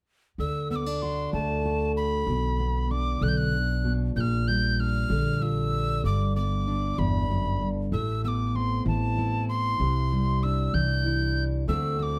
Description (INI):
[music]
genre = folk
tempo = 64 BPM (dotted quarters)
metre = 6/8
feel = straight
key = D mixolydian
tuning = A4 = 439 Hz
[part]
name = breathy bright tin whistle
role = melody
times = 0.4-12.2 s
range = A5 to G6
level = -33 LUFS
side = equal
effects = none
[part]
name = fingerpicked steel-string acoustic guitar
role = accompaniment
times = 0.4-12.2 s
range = E2 to F#4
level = -30 LUFS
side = equal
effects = none
[part]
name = upright bass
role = bass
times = 0.4-12.2 s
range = G1 to D2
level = -30 LUFS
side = equal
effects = none
[sound]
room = moderate studio reverb, RT60 0.7 s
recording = none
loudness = -26 LUFS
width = mono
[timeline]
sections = 0.4-12.2 A section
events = none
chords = 0.4 D; 2.3 Bm; 4.2 Bb6; 6.0 G; 7.9 Amadd9; 9.8 Cadd9; 11.7 D7